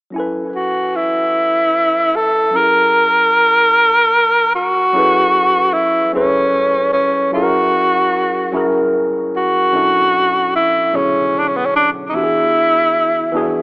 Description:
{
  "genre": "R&B",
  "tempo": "50 BPM (dotted quarters)",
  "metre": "6/8",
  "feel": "straight",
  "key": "unclear",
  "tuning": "A4 = 440 Hz",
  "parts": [
    { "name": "tine electric piano", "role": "accompaniment", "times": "0.1-13.6 s", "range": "B2 to G#5", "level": "-20 LUFS", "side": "equal", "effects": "lush chorus, analog delay" },
    { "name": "breathy tenor saxophone", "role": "melody", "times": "0.6-13.6 s", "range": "B3 to A#4", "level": "-12 LUFS", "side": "equal", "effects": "analog delay" }
  ],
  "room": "moderate plate reverb, RT60 2.9 s",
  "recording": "echo-heavy mix, telephone sound",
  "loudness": "-12 LUFS",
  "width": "side -28 dB against mid",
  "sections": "0.1-4.9 A section; 4.9-13.6 B section",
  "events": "none",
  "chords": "0.1 F#m11; 2.5 F#7; 4.9 F#m11; 7.3 F#7; 9.7 Bm11; 12.1 E9"
}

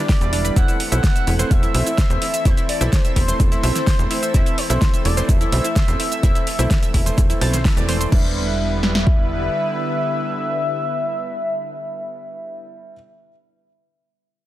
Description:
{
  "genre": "progressive house",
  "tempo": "127 BPM",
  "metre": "4/4",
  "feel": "straight",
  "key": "E minor",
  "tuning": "A4 = 441 Hz",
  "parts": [
    { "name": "expressive synth lead", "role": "melody", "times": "0.0-12.7 s", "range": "C5 to F#5", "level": "-25 LUFS", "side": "left 1 dB", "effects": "analog chorus, sidechain pumping, digital delay" },
    { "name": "supersaw pad", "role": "sustained chords", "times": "0.0-12.7 s", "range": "D3 to B4", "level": "-29 LUFS", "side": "equal", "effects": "sidechain pumping" },
    { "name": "analog pluck", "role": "arpeggios", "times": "0.0-8.3 s", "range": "D4 to A6", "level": "-29 LUFS", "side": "left 1 dB", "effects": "chorus, sidechain pumping, digital delay" },
    { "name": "deep house drum kit", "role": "drums", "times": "0.1-9.2 s", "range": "kick drum, snare drum", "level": "-17 LUFS", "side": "equal", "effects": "overdrive" },
    { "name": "pop drum kit", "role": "drums", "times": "0.1-8.2 s", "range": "crash cymbal, hi-hat, shaker, snare drum", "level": "-25 LUFS", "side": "right 1 dB", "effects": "none" },
    { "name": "clear baby grand piano", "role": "stabs", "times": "0.2-12.9 s", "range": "E3 to D5", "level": "-28 LUFS", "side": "right 4 dB", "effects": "sidechain pumping, digital delay" },
    { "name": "tight sequencer bass", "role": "bass", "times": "0.2-9.5 s", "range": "E1 to B1", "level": "-21 LUFS", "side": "equal", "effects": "sidechain pumping" }
  ],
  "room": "light reverb, digital ambience",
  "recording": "dense, heavily limited modern master",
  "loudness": "-16 LUFS",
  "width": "side -14 dB against mid",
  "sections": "0.0-8.1 A section; 8.1-11.9 B section",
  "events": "drop 0.0-8.1; band accent 7.7",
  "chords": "0.0 Em7; 0.6 Am/E; 8.1 Em7"
}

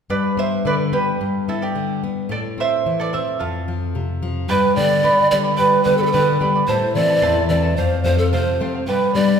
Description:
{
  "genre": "andean folk, Andean ensemble",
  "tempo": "109 BPM",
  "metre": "2/4",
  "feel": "straight",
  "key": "unclear",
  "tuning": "A4 = 443 Hz",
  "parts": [
    { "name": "charango", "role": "accompaniment", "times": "0.1-9.4 s", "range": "E4 to B5", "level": "-21 LUFS", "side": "right 3 dB", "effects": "none" },
    { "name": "flamenco guitar", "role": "accompaniment", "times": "0.1-9.4 s", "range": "E2 to D4", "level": "-20 LUFS", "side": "left 3 dB", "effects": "none" },
    { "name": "breathy mellow polished pan flute", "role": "melody", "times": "4.5-9.4 s", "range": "G4 to D5", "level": "-18 LUFS", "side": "right 2 dB", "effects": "slapback echo" }
  ],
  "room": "wet recital hall reverb, RT60 1.7 s",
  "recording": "heard from further back in the room",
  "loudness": "-16 LUFS",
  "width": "side -7 dB against mid",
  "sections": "0.1-4.5 A section; 4.5-9.4 B section",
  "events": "charango solo 0.1-4.5",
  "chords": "0.1 G; 2.3 Am; 3.4 F; 4.5 G; 6.7 Am; 7.8 F; 8.9 G"
}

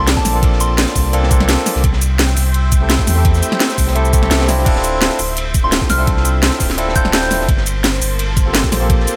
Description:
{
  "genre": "liquid drum and bass",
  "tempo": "170 BPM",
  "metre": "4/4",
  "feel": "swing 53% on 16ths",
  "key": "D minor",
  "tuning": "A4 = 439 Hz",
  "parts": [
    { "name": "soft synth bell", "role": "melody", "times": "0.0-1.1, 5.6-7.5 s", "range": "A5 to G6", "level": "-25 LUFS", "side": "equal", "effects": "chorus, dub echo" },
    { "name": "barky tine electric piano", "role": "accompaniment", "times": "0.0-9.2 s", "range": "A3 to A4", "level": "-23 LUFS", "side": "equal", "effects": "digital delay" },
    { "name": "lush unison pad", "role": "sustained chords", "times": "0.0-9.2 s", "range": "Bb3 to A5", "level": "-29 LUFS", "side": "equal", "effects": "chorus, phaser, sidechain pumping" },
    { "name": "sub bass with octave", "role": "bass", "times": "0.0-9.1 s", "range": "D1 to E2", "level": "-19 LUFS", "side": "equal", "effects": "none" },
    { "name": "crunchy breakbeat drum kit", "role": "drums", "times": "0.1-9.2 s", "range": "ride cymbal, snare drum", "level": "-28 LUFS", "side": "equal", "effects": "high-pass filter on cymbals, high-pass filter on snare, high-pass filter on room" },
    { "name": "drum and bass drum kit", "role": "drums", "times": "0.1-9.2 s", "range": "crash cymbal, hi-hat, shaker, snare drum", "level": "-20 LUFS", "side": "equal", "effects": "none" },
    { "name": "electronic kick drum", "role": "drums", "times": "0.2-9.0 s", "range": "none", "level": "-18 LUFS", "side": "equal", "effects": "none" }
  ],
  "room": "light reverb, digital ambience",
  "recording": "none",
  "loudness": "-15 LUFS",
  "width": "mono",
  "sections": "0.0-4.7 A section; 4.7-9.2 A section",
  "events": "drop 0.0-4.7, 4.7-9.2; kick drops out 4.3-4.7; band accent 4.3",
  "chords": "0.0 C13sus4; 1.8 Am7/C; 4.7 Dm9; 7.5 Gm11"
}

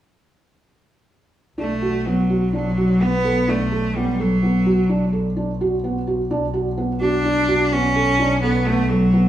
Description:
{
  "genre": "contemporary instrumental, contemporary",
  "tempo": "127 BPM",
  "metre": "5/4",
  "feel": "straight",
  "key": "B minor",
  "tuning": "A4 = 441 Hz",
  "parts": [
    { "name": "bright cello", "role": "melody", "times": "1.6-9.3 s", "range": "F#3 to D4", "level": "-18 LUFS", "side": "equal", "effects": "none" },
    { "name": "felt-muted upright piano", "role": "arpeggios", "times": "1.6-9.3 s", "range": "B3 to A4", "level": "-23 LUFS", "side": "right 2 dB", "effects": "none" },
    { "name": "clear double bass", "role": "bass", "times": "1.6-9.3 s", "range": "B1", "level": "-25 LUFS", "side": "left 1 dB", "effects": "none" }
  ],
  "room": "wet recital hall reverb, RT60 1.5 s",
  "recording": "small room ambience",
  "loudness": "-17 LUFS",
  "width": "side -12 dB against mid",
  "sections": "1.6-9.3 A section",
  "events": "none",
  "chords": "1.6 Bm7"
}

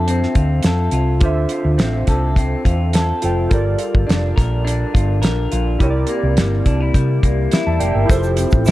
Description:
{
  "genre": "indie pop, bedroom pop",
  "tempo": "105 BPM",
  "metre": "4/4",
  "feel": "straight",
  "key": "unclear",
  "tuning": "A4 = 441 Hz",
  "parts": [
    { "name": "electric guitar through a small old amp", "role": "accompaniment", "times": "0.0-8.7 s", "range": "C3 to Bb4", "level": "-22 LUFS", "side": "left 3 dB", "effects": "lush chorus, warbly pitch drift" },
    { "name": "warbly lo-fi synth keys", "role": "accompaniment", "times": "0.0-8.7 s", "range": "E4 to A5", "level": "-24 LUFS", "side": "right 3 dB", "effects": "chorus, cassette tape" },
    { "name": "hollow-body short-scale fingered electric bass", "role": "bass", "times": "0.0-8.7 s", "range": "F1 to C3", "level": "-18 LUFS", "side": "equal", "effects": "none" },
    { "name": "damped 70s drum kit", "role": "drums", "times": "0.1-8.7 s", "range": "hi-hat, kick drum, snare drum", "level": "-16 LUFS", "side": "equal", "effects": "none" },
    { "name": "egg shaker", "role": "percussion", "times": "8.1-8.7 s", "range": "none", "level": "-37 LUFS", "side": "right 5 dB", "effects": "none" }
  ],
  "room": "little or no reverb",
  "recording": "dark, warm production",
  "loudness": "-14 LUFS",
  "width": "side -16 dB against mid",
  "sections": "0.0-8.1 A section",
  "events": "none",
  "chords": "0.0 Dm7; 3.5 Gm7; 5.8 C7; 8.1 Fmaj7"
}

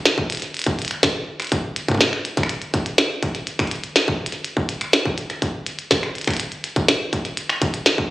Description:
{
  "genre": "IDM",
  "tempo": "123 BPM",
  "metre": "4/4",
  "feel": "straight",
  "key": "none",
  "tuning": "none",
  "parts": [
    { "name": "glitchy drum kit", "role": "drums", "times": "0.1-8.0 s", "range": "finger snaps, hi-hat, snare drum", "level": "-20 LUFS", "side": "equal", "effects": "digital delay" },
    { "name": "electronic kick drum", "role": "drums", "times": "0.2-8.1 s", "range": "none", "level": "-24 LUFS", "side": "equal", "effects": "distortion" }
  ],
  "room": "moderate digital room reverb, RT60 1.1 s",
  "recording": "recorded on a phone in the room, studio reverb",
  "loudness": "-19 LUFS",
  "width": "side -17 dB against mid",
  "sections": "0.0-8.1 A section",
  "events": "none",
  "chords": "none"
}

